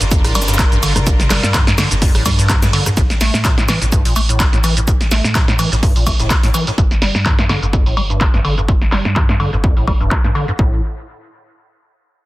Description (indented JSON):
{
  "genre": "acid house",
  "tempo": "126 BPM",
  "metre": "4/4",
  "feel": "swing 55% on 16ths",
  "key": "unclear",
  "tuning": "A4 = 440 Hz",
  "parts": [
    { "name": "clear studio string section", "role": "sustained chords", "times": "0.0-2.9 s", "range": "G3 to Bb4", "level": "-26 LUFS", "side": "equal", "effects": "sidechain pumping" },
    { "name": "acid bass, square", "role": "riff", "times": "0.0-10.8 s", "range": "G1 to A3", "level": "-20 LUFS", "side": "equal", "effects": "wide subtle chorus" },
    { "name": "warm sub bass", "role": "bass", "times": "0.0-10.8 s", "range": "F1 to A2", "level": "-20 LUFS", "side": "equal", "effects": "sidechain pumping" },
    { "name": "breakbeat sampler-style drum kit", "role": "drums", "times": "0.0-6.8 s", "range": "hi-hat, shaker, snare drum", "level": "-27 LUFS", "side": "left 1 dB", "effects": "sidechain pumping on perc, high-pass filter on perc, high-pass filter on snare, sidechain pumping on hats, high-pass filter on hats, high-pass filter on room" },
    { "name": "punchy analog drum machine", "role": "drums", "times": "0.0-10.6 s", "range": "handclaps, hi-hat, ride cymbal, rim click, shaker, snare drum, toms, woodblock", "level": "-18 LUFS", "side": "equal", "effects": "low-pass filter on hats, low-pass filter on perc, low-pass filter on snare, low-pass filter on toms, low-pass filter on cymbals" },
    { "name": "electronic kick drum", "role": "drums", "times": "0.1-10.7 s", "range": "none", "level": "-15 LUFS", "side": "equal", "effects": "none" }
  ],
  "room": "light reverb",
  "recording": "dense, heavily limited modern master",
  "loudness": "-12 LUFS",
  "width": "side -18 dB against mid",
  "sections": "0.0-3.0 A section; 3.0-10.6 B section; 10.6-12.3 C section",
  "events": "drop 0.0-3.0; drum fill 2.5-3.0; filter sweep on drum 3.0-10.6; filter sweep on acid bass 3.0-10.6",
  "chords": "0.0 Gm7; 3.0 A5; 6.8 G5; 10.6 N.C.",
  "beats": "0.11 0.59 | 1.07 1.54 2.02 2.50 | 2.97 3.45 3.92 4.40 | 4.88 5.35 5.83 6.30 | 6.78 7.26 7.73 8.21 | 8.69 9.16 9.64 10.11 | 10.59"
}